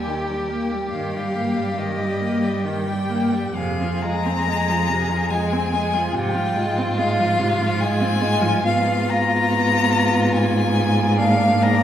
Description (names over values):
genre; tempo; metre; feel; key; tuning
classical, slow romantic movement for string quartet; 70 BPM; 3/4; uneven beats, rubato; unclear; A4 = 440 Hz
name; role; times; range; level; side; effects
rich violin; melody; 0.0-11.8 s; Eb5 to Bb5; -23 LUFS; left 3 dB; none
clear violin; second line; 0.0-11.8 s; D4 to Ab4; -26 LUFS; left 2 dB; none
rich viola; accompaniment; 0.0-11.8 s; C3 to C4; -24 LUFS; right 1 dB; none
rich cello; bass; 0.0-11.8 s; Eb2 to Ab2; -23 LUFS; right 2 dB; none
room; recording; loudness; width
wet recital hall reverb, RT60 1.6 s; heard from further back in the room; -18 LUFS; side -10 dB against mid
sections
0.0-11.8 A section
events
none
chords
0.0 Eb; 0.9 Eb/G; 3.6 Fm; 6.1 Fm/Ab; 8.7 Fdim/Ab; 11.2 Bb7/Ab